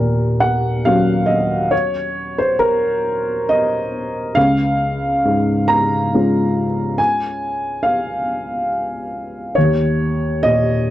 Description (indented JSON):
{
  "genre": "neoclassical minimalist piano",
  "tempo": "69 BPM",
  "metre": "3/4",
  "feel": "rubato",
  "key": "Db major",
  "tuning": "A4 = 439 Hz",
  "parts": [
    { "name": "dark upright piano", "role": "solo", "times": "0.0-10.9 s", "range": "Db2 to Bb5", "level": "-15 LUFS", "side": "equal", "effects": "none" }
  ],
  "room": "light reverb",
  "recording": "dry, close 1970s-style studio recording",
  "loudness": "-15 LUFS",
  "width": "side -14 dB against mid",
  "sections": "0.0-10.9 A section",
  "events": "none",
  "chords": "0.0 Ebm7; 4.4 Db; 9.6 Eb7(no3)"
}